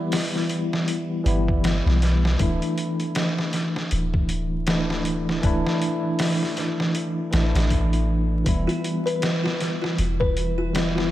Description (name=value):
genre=trip hop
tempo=79 BPM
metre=4/4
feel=swing 59% on 16ths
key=unclear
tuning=A4 = 442 Hz
part: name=bell-like tine electric piano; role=accompaniment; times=0.0-11.1 s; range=E3 to E4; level=-25 LUFS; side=equal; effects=medium stereo tremolo, harmonic tremolo, low-pass filter, tape echo
part: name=trip hop sampler-style drum kit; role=drums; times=0.1-11.1 s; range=hi-hat, kick drum, snare drum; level=-25 LUFS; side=equal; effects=overdrive, studio reverb
part: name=soft 808-style bass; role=bass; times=1.3-11.1 s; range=D1 to B1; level=-23 LUFS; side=equal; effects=none
part: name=music box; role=arpeggios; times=8.7-11.1 s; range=E4 to B4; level=-27 LUFS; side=left 2 dB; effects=tape echo
room=moderate plate reverb, RT60 2.8 s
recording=dreamy mix soaked in reverb, vinyl crackle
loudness=-21 LUFS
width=side -14 dB against mid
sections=0.0-11.1 A section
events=none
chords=0.0 Em; 2.4 Dsus2; 8.5 Em